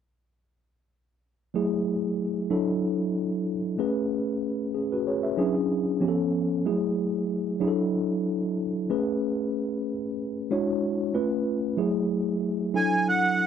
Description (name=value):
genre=soul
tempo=94 BPM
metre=4/4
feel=swing 54% on 16ths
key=F# minor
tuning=A4 = 437 Hz
part: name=mellow tine electric piano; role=accompaniment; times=1.5-13.5 s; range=E#3 to E5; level=-25 LUFS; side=equal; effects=medium stereo tremolo
part: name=accordion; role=melody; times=12.8-13.5 s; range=F#5 to G#5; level=-22 LUFS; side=right 3 dB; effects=light tremolo tuning
room=light reverb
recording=dry, close 1970s-style studio recording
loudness=-24 LUFS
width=side -8 dB against mid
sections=1.5-11.8 A section; 11.8-13.5 B section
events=none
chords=1.5 F#m9; 2.5 E9sus4; 3.8 Amaj9; 5.4 Dmaj9#11; 6.0 C#aug7; 6.7 F#m9; 7.6 E9sus4; 8.9 Amaj9; 10.5 Dmaj9#11; 11.1 C#aug7; 11.8 F#m9; 12.7 E9sus4